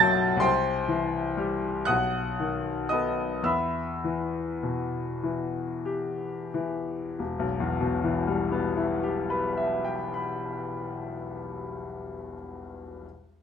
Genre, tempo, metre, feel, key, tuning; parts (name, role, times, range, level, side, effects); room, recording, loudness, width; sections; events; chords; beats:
classical, romantic nocturne for solo piano; 29-49 BPM (dotted quarters); 6/8; rubato; E minor; A4 = 441 Hz
bright grand piano; solo; 0.0-13.1 s; E1 to A6; -25 LUFS; left 2 dB
moderate stone room reverb, RT60 1.3 s; minimal, uncompressed stereo recording; -26 LUFS; side -7 dB against mid
0.0-7.2 A section; 7.2-10.9 B section
slowing down 0.0-7.2
0.4 C; 1.9 B7; 3.5 Em
| 0.43 1.90 | 3.47 5.22 | 7.18 9.01